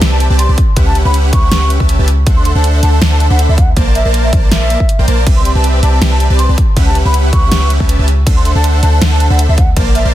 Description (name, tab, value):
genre	future bass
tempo	160 BPM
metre	4/4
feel	half-time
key	unclear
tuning	A4 = 441 Hz
part	supersaw chords	riff	0.0-10.1 s	Bb3 to B5	-18 LUFS	right 1 dB	sidechain pumping
part	warm 808-style bass	bass	0.0-10.1 s	Bb1 to D2	-11 LUFS	equal	sidechain pumping
part	big-room dance drum kit	drums	0.0-10.0 s	crash cymbal, hi-hat, snare drum	-18 LUFS	equal	none
part	baroque flute	melody	0.1-10.1 s	E5 to C#6	-19 LUFS	equal	sidechain pumping, ping-pong delay
part	electronic kick drum	drums	0.6-9.8 s	none	-12 LUFS	equal	none
room	little or no reverb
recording	dense, heavily limited modern master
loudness	-8 LUFS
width	side -13 dB against mid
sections	0.0-10.1 A section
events	none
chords	0.0 Cmaj9; 0.6 A13/C#; 2.3 D9; 3.8 Bbmaj9; 5.3 Cmaj9; 6.6 A13/C#; 8.3 D9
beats	0.02 0.39 | 0.77 1.14 1.52 1.89 | 2.27 2.64 3.02 3.39 | 3.77 4.14 4.52 4.89 | 5.27 5.64 6.02 6.39 | 6.77 7.14 7.52 7.89 | 8.27 8.64 9.02 9.39 | 9.77